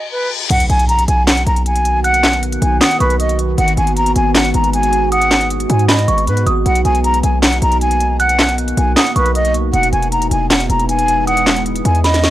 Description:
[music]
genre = hip hop, trap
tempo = 156 BPM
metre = 4/4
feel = half-time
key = B major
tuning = A4 = 440 Hz
[part]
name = breathy concert flute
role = melody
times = 0.0-12.3 s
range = B4 to A#5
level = -16 LUFS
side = equal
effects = low-pass filter
[part]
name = reverse cymbal and impact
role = sound effects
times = 0.0-2.0 s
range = none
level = -24 LUFS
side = left 2 dB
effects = none
[part]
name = deep dark ambient pad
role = sustained chords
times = 1.2-12.3 s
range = D#3 to F#4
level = -21 LUFS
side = right 1 dB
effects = chorus, built-in reverb
[part]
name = hard-hitting 808-style bass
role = bass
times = 0.5-12.3 s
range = E1 to G#2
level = -16 LUFS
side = equal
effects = none
[part]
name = trap drum kit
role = drums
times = 0.5-12.3 s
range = crash cymbal, handclaps, hi-hat, snare drum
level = -16 LUFS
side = equal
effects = none
[part]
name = glassy synth bell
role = second line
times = 2.0-12.3 s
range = B5 to F#6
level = -22 LUFS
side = right 3 dB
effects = chorus, analog delay
[sound]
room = little or no reverb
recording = dry, gritty hardware recording, cassette tape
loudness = -12 LUFS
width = side -14 dB against mid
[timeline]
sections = 0.5-12.3 A section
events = reverse cymbal 0.0-0.5; stop 0.0-0.5; impact 0.5-2.0; drum fill 12.0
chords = 0.0 N.C.; 0.5 Bmaj7; 3.6 G#m7; 6.7 Bmaj7; 9.7 Emaj7

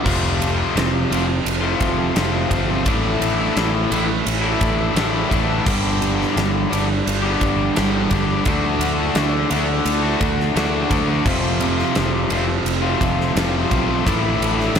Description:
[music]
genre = classic rock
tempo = 86 BPM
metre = 4/4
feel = straight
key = unclear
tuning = A4 = 440 Hz
[part]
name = overdriven electric guitar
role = riff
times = 0.0-14.8 s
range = F2 to D4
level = -25 LUFS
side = right 8 dB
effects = phaser, slapback echo
[part]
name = overdriven semi-hollow guitar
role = riff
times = 0.0-14.8 s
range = F2 to G4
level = -22 LUFS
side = left 8 dB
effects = slapback echo
[part]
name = fuzz guitar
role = riff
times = 0.1-14.8 s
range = F2 to D4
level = -25 LUFS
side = equal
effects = distortion
[part]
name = growling fingered electric bass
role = bass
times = 0.1-14.8 s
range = F1 to D2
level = -24 LUFS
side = equal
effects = overdrive
[part]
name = huge arena drum kit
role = drums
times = 0.1-14.8 s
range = crash cymbal, kick drum, ride cymbal, snare drum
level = -23 LUFS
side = right 1 dB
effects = none
[sound]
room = moderate lush hall reverb, RT60 2.7 s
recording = big arena sound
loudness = -17 LUFS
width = side -7 dB against mid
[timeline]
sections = 0.1-14.8 A section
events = none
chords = 0.1 F; 2.9 Asus4; 5.7 G; 8.5 D; 11.3 F; 14.1 Asus4

